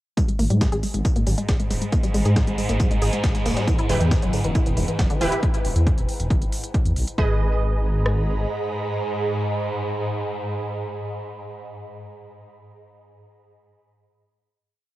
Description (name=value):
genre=driving peak-time techno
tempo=137 BPM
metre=4/4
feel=straight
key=G# harmonic minor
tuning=A4 = 440 Hz
part: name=resonant blip pluck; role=riff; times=0.2-7.4 s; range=D3 to G#4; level=-27 LUFS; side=equal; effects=chorus, sidechain pumping, cassette tape, tape echo
part: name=swarming drone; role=drone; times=1.2-10.6 s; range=G#2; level=-29 LUFS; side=equal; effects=built-in reverb, sidechain pumping, cassette tape
part: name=breakbeat sampler-style drum kit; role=drums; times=0.2-5.3 s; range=hi-hat, snare drum, tambourine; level=-35 LUFS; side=equal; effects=high-pass filter on perc, cassette tape, high-pass filter on snare, high-pass filter on hats
part: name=electronic hi-hat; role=drums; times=0.2-7.2 s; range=none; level=-35 LUFS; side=right 1 dB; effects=cassette tape
part: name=techno drum kit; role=drums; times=0.2-8.2 s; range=kick drum, rim click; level=-22 LUFS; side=equal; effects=cassette tape
part: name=ethereal airy pad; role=texture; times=1.4-10.8 s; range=E4 to B5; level=-32 LUFS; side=right 2 dB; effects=ensemble chorus, built-in reverb, sidechain pumping, cassette tape
part: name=dark detuned saw bass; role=bass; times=0.4-8.5 s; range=D1 to G#2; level=-22 LUFS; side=equal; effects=sidechain pumping
part: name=rave stab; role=stabs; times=3.9-10.6 s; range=E4 to D#5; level=-28 LUFS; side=right 2 dB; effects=chorus, built-in reverb, vintage 12-bit sampler grit, sidechain pumping, cassette tape, tape echo
room=little or no reverb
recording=home recording on cassette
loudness=-20 LUFS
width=side -16 dB against mid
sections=0.2-7.2 groove; 7.2-10.7 final chord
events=fade-in on ambient pad 0.2-5.4; filter sweep on synth arpeggio sound 0.2-5.4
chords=0.2 G#m; 3.7 Em; 7.2 G#m